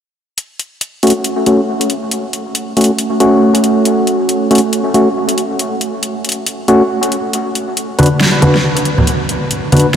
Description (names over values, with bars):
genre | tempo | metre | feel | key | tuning
deep dubstep | 138 BPM | 4/4 | swing 58% on 16ths, half-time | F# minor | A4 = 440 Hz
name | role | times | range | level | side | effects
dubstep drum kit | drums | 0.4-10.0 s | hi-hat, snare drum | -17 LUFS | left 1 dB | overdrive
percussive organ stab | stabs | 1.0-9.9 s | A3 to B4 | -12 LUFS | equal | chorus, dub echo
congas | percussion | 8.0-9.8 s | none | -12 LUFS | equal | dub echo
room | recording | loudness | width
wet huge ambient reverb, RT60 7.6 s | dreamy mix soaked in reverb | -11 LUFS | side -8 dB against mid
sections
0.4-10.0 A section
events
filter sweep on synth stab 0.4-10.0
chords
0.4 F#m; 7.3 Bm